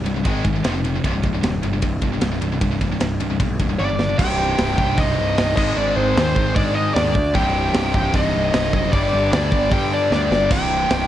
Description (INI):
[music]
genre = heavy metal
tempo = 152 BPM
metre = 4/4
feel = straight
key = C harmonic minor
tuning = A4 = 438 Hz
[part]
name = scooped high-gain guitar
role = riff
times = 0.0-11.1 s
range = C2 to Ab3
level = -27 LUFS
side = right 8 dB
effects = distortion
[part]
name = tight distorted guitar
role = riff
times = 0.0-11.1 s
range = C2 to Ab3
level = -26 LUFS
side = left 9 dB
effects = distortion
[part]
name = fuzz picked electric bass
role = bass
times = 0.1-11.1 s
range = C1 to Ab2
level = -23 LUFS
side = equal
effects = overdrive
[part]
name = tight metal drum kit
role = drums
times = 0.1-11.0 s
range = crash cymbal, hi-hat, kick drum, ride cymbal, snare drum, toms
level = -23 LUFS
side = equal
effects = vintage 12-bit sampler grit
[part]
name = high-gain lead guitar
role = melody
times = 3.8-11.1 s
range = C5 to G5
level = -21 LUFS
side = equal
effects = distortion
[part]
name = bluesy overdriven lead guitar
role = second line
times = 3.8-11.1 s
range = C4 to G4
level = -29 LUFS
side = right 2 dB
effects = distortion
[part]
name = sludgy distorted guitar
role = riff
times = 4.2-11.1 s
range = C2 to Ab4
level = -27 LUFS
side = equal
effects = overdrive
[sound]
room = light reverb, studio reverb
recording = cassette tape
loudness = -17 LUFS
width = side -12 dB against mid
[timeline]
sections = 0.0-4.2 A section; 4.2-11.1 B section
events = drum fill 3.8-4.2, 10.1-10.5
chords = 0.2 Ab5; 0.6 F5; 1.0 C5; 3.8 G5; 4.2 Cm; 5.6 Ab; 7.3 Cm; 8.9 G; 10.5 Cm